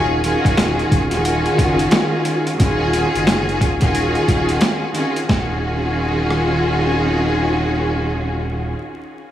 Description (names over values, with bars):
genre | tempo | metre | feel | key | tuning
hip hop, boom-bap hip-hop | 89 BPM | 4/4 | swing 63% on 16ths | Eb minor | A4 = 441 Hz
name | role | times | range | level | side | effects
warm studio string section | accompaniment | 0.0-8.8 s | Eb3 to Ab4 | -17 LUFS | equal | cassette tape, dub echo
sub bass with octave | bass | 0.0-8.7 s | Eb1 to Gb1 | -25 LUFS | equal | none
boom bap sampler-style drum kit | drums | 0.2-6.5 s | hi-hat, kick drum, rim click, snare drum | -19 LUFS | equal | none
room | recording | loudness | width
light reverb, digital ambience | echo-heavy mix, vinyl crackle, studio reverb | -15 LUFS | side -11 dB against mid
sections
0.0-5.3 A section; 5.3-8.0 B section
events
none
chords
0.0 Ebm11